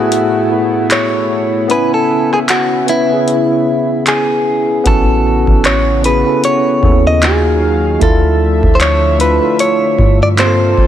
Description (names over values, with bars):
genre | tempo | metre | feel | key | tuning
contemporary R&B | 76 BPM | 4/4 | swing 58% on 16ths | unclear | A4 = 441 Hz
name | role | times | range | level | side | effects
direct-recorded clean electric guitar | melody | 0.0-10.9 s | E4 to D#5 | -14 LUFS | equal | none
tine electric piano | accompaniment | 0.0-10.9 s | A3 to G#5 | -16 LUFS | equal | medium stereo tremolo
chorused pulse-width pad | sustained chords | 0.0-10.9 s | A2 to E#5 | -21 LUFS | left 1 dB | none
booming analog drum machine | drums | 0.1-10.9 s | handclaps, hi-hat, kick drum, rim click | -16 LUFS | equal | none
soft 808-style bass | bass | 4.9-10.9 s | G1 to G2 | -14 LUFS | equal | none
room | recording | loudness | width
light reverb | none | -10 LUFS | side -10 dB against mid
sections
0.0-10.9 A section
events
break 0.0-4.9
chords
0.0 F#m11; 1.7 C#m7; 4.9 A69; 7.2 D#madd9; 8.0 Dmadd9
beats
0.12 0.91 | 1.70 2.49 3.28 4.07 | 4.86 5.64 6.43 7.22 | 8.01 8.80 9.59 10.38